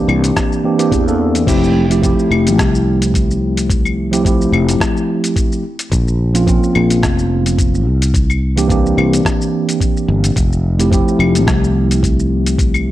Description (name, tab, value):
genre	sunset chillout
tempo	108 BPM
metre	4/4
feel	swing 54% on 16ths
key	F major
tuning	A4 = 441 Hz
part	mellow tine electric piano	accompaniment	0.0-12.9 s	E3 to A4	-15 LUFS	moving between left 3 dB and right 4 dB	auto-pan, tape echo
part	sustaining fretless electric bass	bass	0.0-12.9 s	F1 to E2	-16 LUFS	equal	none
part	dusty soul sampler-style drum kit	drums	0.1-12.8 s	claves, crash cymbal, hi-hat, rim click, shaker	-22 LUFS	left 2 dB	none
part	electronic kick drum	drums	0.4-12.7 s	none	-17 LUFS	equal	none
room	light reverb, digital ambience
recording	dry, gritty hardware recording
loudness	-12 LUFS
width	side -14 dB against mid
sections	0.0-1.5 A section; 1.5-12.9 B section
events	filter sweep on tine electric piano 0.0-1.5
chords	0.0 C7; 1.5 Fmaj7; 5.6 Bbmadd9; 7.9 C7; 10.4 Fmaj7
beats	0.36 0.92 | 1.48 2.03 2.59 3.14 | 3.70 4.25 4.81 5.36 | 5.92 6.47 7.03 7.59 | 8.14 8.70 9.25 9.81 | 10.36 10.92 11.47 12.03 | 12.59